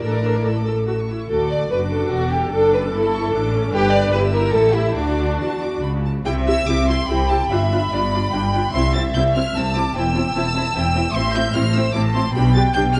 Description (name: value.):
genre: quick classical-period movement for string orchestra.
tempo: 148 BPM.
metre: 3/4.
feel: rubato.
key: D major, C major from 6.3 s.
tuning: A4 = 445 Hz.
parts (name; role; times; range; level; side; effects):
clear studio violin section; melody; 0.0-13.0 s; G5 to A6; -30 LUFS; equal; none.
warm studio violin section; second line; 0.0-13.0 s; D4 to A5; -24 LUFS; equal; none.
clear studio viola section; accompaniment; 0.0-13.0 s; C4 to D5; -27 LUFS; equal; none.
rich studio cello section; bass; 0.0-13.0 s; C2 to E3; -27 LUFS; equal; none.
rich studio double bass section; bass; 0.0-13.0 s; E1 to E2; -25 LUFS; equal; none.
room: moderate scoring stage reverb, RT60 1.7 s.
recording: dark, warm production, nothing above 10.7 kHz.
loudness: -19 LUFS.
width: mono.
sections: 0.0-6.3 A section; 6.3-13.0 B section.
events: none.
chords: 0.0 Asus4; 0.9 A; 1.3 D; 2.5 D/F#; 3.7 G; 4.1 Em/G; 4.5 A5; 5.0 D; 6.3 C; 7.5 G7; 8.7 C; 9.9 C/E; 11.1 Am; 12.3 G/B.